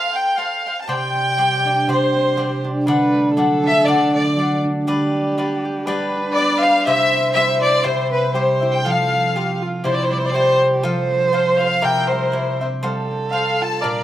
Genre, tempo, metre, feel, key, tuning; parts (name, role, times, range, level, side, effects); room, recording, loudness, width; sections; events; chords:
mexican folk, mariachi; 121 BPM; 2/4; swing 55% on 8ths; C major, F major from 8.9 s; A4 = 440 Hz
clear chamber violin section; melody; 0.0-14.0 s; B4 to A5; -18 LUFS; left 1 dB; slapback echo
cavaquinho; accompaniment; 0.0-14.0 s; D4 to G5; -25 LUFS; left 3 dB; slapback echo
dark erhu; second line; 0.9-14.0 s; E4 to C5; -24 LUFS; right 4 dB; slapback echo
concert harp; arpeggios; 0.9-14.0 s; Bb2 to G4; -21 LUFS; right 1 dB
light reverb; recorded outdoors, with no room sound; -16 LUFS; side -12 dB against mid
0.9-8.9 A section; 8.9-14.0 B section
0.0 Fadd9; 0.9 Csus2; 2.9 D; 4.9 G; 6.9 C; 8.9 F; 9.8 Cadd9; 10.8 F; 11.8 C; 12.8 Fadd9